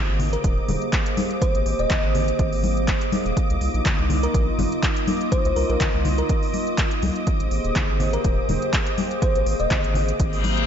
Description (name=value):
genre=deep house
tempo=123 BPM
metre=4/4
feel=swing 54% on 16ths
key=unclear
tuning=A4 = 445 Hz
part: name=warbly tape-like pad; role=sustained chords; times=0.0-10.7 s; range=Bb3 to D6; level=-27 LUFS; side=equal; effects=chorus, built-in reverb, sidechain pumping
part: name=analog string pad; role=texture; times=0.0-10.7 s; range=Eb5 to D6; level=-32 LUFS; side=right 1 dB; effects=ensemble chorus
part: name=round analog bass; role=bass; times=0.1-10.7 s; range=Eb1 to C2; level=-24 LUFS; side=equal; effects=sidechain pumping
part: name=deep house drum kit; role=drums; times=0.2-10.7 s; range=handclaps, hi-hat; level=-29 LUFS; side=equal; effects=none
part: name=congas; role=percussion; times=0.2-10.5 s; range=none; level=-29 LUFS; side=left 3 dB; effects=none
part: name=thumb-piano-like synth pluck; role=melody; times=0.3-10.3 s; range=Bb4 to Eb5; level=-29 LUFS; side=left 1 dB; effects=chorus, diffuse ambient delay
part: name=electronic kick drum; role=drums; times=0.4-10.3 s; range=none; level=-23 LUFS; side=equal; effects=none
part: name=reverse cymbal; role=sound effects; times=10.3-10.7 s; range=none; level=-25 LUFS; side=left 7 dB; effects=none
room=moderate lush hall reverb, RT60 1.9 s, digital ambience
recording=dreamy mix soaked in reverb, nothing above 7.6 kHz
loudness=-19 LUFS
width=side -8 dB against mid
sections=0.0-10.7 A section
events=reverse cymbal 10.3-10.7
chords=0.0 Abmaj9; 3.4 Cm11; 7.3 Abmaj9